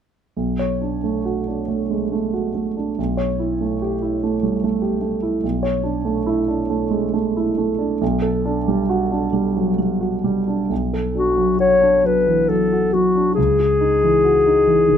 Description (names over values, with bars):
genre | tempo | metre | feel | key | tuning
classical, impressionist duo for clarinet and grand piano | 63-75 BPM | 3/4 | rubato | B dorian | A4 = 439 Hz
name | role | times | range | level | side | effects
dark concert grand piano | accompaniment | 0.4-15.0 s | B1 to C#5 | -19 LUFS | right 2 dB | none
mellow clarinet | melody | 11.2-15.0 s | F#4 to C#5 | -15 LUFS | left 3 dB | none
room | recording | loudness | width
moderate studio reverb, RT60 0.8 s | minimal, uncompressed stereo recording | -17 LUFS | side -8 dB against mid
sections
0.4-10.7 A section; 10.7-15.0 B section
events
none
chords
0.4 Bm9; 3.0 A9/B; 5.4 Bm11; 8.0 Gmaj9/B; 10.7 Bm7; 13.4 C#madd9